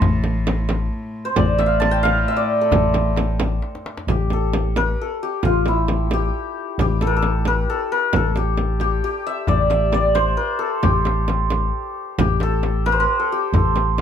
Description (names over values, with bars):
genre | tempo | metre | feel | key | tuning
Persian modal ensemble | 89 BPM (dotted quarters) | 6/8 | straight | A dastgah shur | A4 = 440 Hz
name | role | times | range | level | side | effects
santur | melody | 0.0-14.0 s | E4 to D6 | -21 LUFS | left 1 dB | none
mellow tine electric piano | bass | 0.0-14.0 s | A1 | -21 LUFS | left 1 dB | medium stereo tremolo
rich cello | drone | 0.0-4.1 s | A2 | -28 LUFS | left 2 dB | none
frame drum | percussion | 0.0-14.0 s | none | -25 LUFS | right 3 dB | none
tombak | percussion | 0.0-4.1, 9.5-14.0 s | none | -24 LUFS | left 2 dB | none
room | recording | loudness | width
light reverb | close, detailed microphones | -17 LUFS | side -8 dB against mid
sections
0.0-4.1 A section; 4.1-14.0 B section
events
drum fill 3.6-4.1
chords
none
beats
| 0.02 0.70 | 1.37 2.05 | 2.73 3.40 | 4.08 4.75 | 5.43 6.11 | 6.78 7.46 | 8.13 8.81 | 9.49 10.16 | 10.84 11.52 | 12.19 12.87 | 13.55